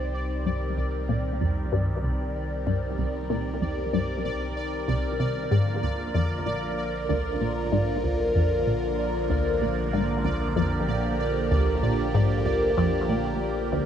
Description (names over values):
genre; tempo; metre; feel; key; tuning
ambient, sequencer-driven space music; 95 BPM; 4/4; straight; unclear; A4 = 439 Hz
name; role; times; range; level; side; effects
phased analog pad; sustained chords; 0.0-13.9 s; D3 to C5; -28 LUFS; equal; phaser, chorus
warm sub bass; bass; 0.0-13.9 s; Bb1 to C2; -33 LUFS; equal; none
pulsing gated texture; texture; 0.0-13.9 s; D5; -33 LUFS; right 2 dB; chorus, built-in reverb
resonant blip pluck; riff; 0.5-13.9 s; C2 to C3; -26 LUFS; left 1 dB; phaser, wide subtle chorus, analog delay
room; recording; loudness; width
light reverb, digital ambience; none; -23 LUFS; side -9 dB against mid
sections
0.0-13.9 A section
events
fade-in on analog synth pad 0.0-13.9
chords
0.0 Cm; 5.5 Bb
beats
| 0.46 1.09 1.72 2.35 | 2.98 3.62 4.25 4.88 | 5.51 6.14 6.78 7.41 | 8.04 8.67 9.30 9.93 | 10.56 11.20 11.83 12.46 | 13.09 13.72